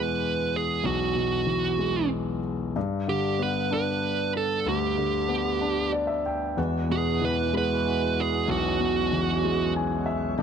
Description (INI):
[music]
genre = six-eight pop ballad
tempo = 63 BPM (dotted quarters)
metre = 6/8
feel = straight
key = E major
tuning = A4 = 440 Hz
[part]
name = smooth overdriven lead guitar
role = melody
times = 0.0-9.7 s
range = F#4 to B4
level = -27 LUFS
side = right 6 dB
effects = none
[part]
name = warm concert grand piano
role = accompaniment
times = 0.0-10.4 s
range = B1 to G#5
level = -27 LUFS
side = left 3 dB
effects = none
[part]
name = tonewheel organ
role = sustained chords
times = 6.6-10.4 s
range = E2 to G4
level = -30 LUFS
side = right 3 dB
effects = overdrive, slow rotary speaker
[sound]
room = studio ambience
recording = dry, close 1970s-style studio recording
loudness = -24 LUFS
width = side -7 dB against mid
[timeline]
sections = 0.0-10.4 A section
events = grand piano fill 5.6-6.6, 9.4-10.4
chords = 0.0 Eadd9; 2.8 G; 6.6 Eadd9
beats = | 0.86 1.81 | 2.76 3.71 | 4.66 5.62 | 6.58 7.53 | 8.49 9.44 | 10.39